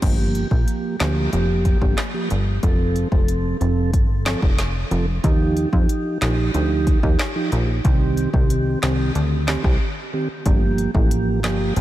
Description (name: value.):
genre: dancehall.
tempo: 92 BPM.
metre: 4/4.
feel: straight.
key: G minor.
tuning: A4 = 439 Hz.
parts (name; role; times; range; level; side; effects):
mellow tonewheel organ; accompaniment; 0.0-11.8 s; Eb3 to A4; -23 LUFS; right 2 dB; slow rotary speaker.
plucky analog bass; bass; 0.0-11.8 s; F1 to F2; -21 LUFS; equal; none.
afro-pop drum kit; drums; 0.0-11.8 s; crash cymbal, handclaps, hi-hat, kick drum, rim click, snare drum; -21 LUFS; equal; none.
room: light reverb, digital ambience.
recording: none.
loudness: -17 LUFS.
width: side -14 dB against mid.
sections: 0.0-10.5 A section; 10.5-11.8 B section.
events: break 9.8-10.5.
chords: 0.0 Gm7; 2.6 F; 5.2 Ebadd9; 7.8 Cm; 10.5 Gm7.